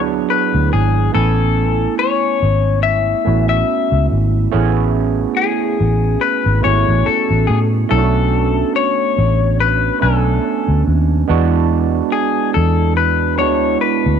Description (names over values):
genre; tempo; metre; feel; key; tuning
R&B, neo-soul; 71 BPM; 4/4; swing 55% on 16ths; A major; A4 = 439 Hz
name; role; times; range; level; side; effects
overdriven tine electric piano; accompaniment; 0.0-14.2 s; F#3 to G#5; -19 LUFS; right 13 dB; wide subtle chorus
vintage muted fingered electric bass; bass; 0.0-14.2 s; G#1 to A2; -16 LUFS; equal; none
electric guitar through a small old amp; melody; 0.3-14.2 s; G#4 to E5; -18 LUFS; left 10 dB; warbly pitch drift, slapback echo
room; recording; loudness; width
light reverb; 1960s-style stereo with parts hard left and right; -13 LUFS; side -7 dB against mid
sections
0.0-7.9 A section; 7.9-14.2 A section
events
none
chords
0.0 E9; 1.1 Amaj7; 7.9 Bm9; 11.3 E9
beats
0.28 | 1.13 1.98 2.82 3.67 | 4.51 5.36 6.20 7.04 | 7.89 8.73 9.58 10.43 | 11.27 12.12 12.96 13.81